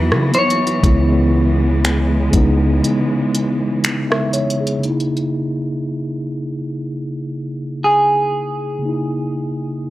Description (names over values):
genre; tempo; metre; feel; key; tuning
contemporary R&B; 60 BPM; 4/4; swing 54% on 16ths; C# dorian; A4 = 440 Hz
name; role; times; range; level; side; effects
mellow tine electric piano; accompaniment; 0.0-9.9 s; C#3 to E5; -19 LUFS; equal; fast stereo tremolo
warm studio string section; sustained chords; 0.0-4.8 s; C#3 to B3; -24 LUFS; equal; sidechain pumping
long sustained 808-style bass; bass; 0.0-2.8 s; C#2 to C#3; -17 LUFS; equal; none
smooth R&B drum kit; drums; 0.1-5.3 s; finger snaps, hi-hat, kick drum, rim click; -19 LUFS; equal; none
clean electric guitar; melody; 0.3-9.9 s; G#4 to C#5; -18 LUFS; equal; lush chorus
room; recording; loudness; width
light reverb, digital ambience; dry, gritty hardware recording; -15 LUFS; side -16 dB against mid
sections
0.0-4.8 A section; 4.8-9.9 B section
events
break 2.8-4.8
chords
0.0 F#7sus4; 0.8 C#m7; 4.8 C#m69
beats
| 0.83 1.83 2.83 3.83 | 4.83 5.83 6.83 7.83 | 8.84 9.84